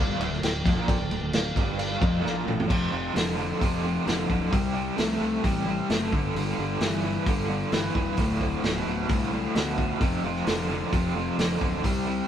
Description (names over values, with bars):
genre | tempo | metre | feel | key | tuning
classic rock | 131 BPM | 4/4 | straight | unclear | A4 = 440 Hz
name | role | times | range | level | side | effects
reed electric piano | accompaniment | 0.0-2.6 s | A4 to G5 | -36 LUFS | left 5 dB | none
tonewheel organ | sustained chords | 0.0-12.3 s | D4 to F5 | -43 LUFS | right 1 dB | none
overdriven electric guitar | riff | 0.0-12.3 s | D2 to A3 | -30 LUFS | right 5 dB | tremolo
overdriven semi-hollow guitar | riff | 0.0-12.3 s | D2 to A3 | -30 LUFS | left 5 dB | none
overdriven fingered electric bass | bass | 0.0-12.2 s | D1 to D2 | -32 LUFS | equal | none
vintage drum kit | drums | 0.2-11.9 s | crash cymbal, hi-hat, kick drum, snare drum, toms | -28 LUFS | equal | none
room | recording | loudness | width
moderate studio reverb, RT60 0.6 s | band playing live in one room | -24 LUFS | side -9 dB against mid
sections
0.0-2.7 A section; 2.7-12.3 B section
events
drum fill 2.2-2.7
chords
0.0 Dm; 2.7 F; 4.5 C; 6.1 G; 8.2 Dm7; 10.0 F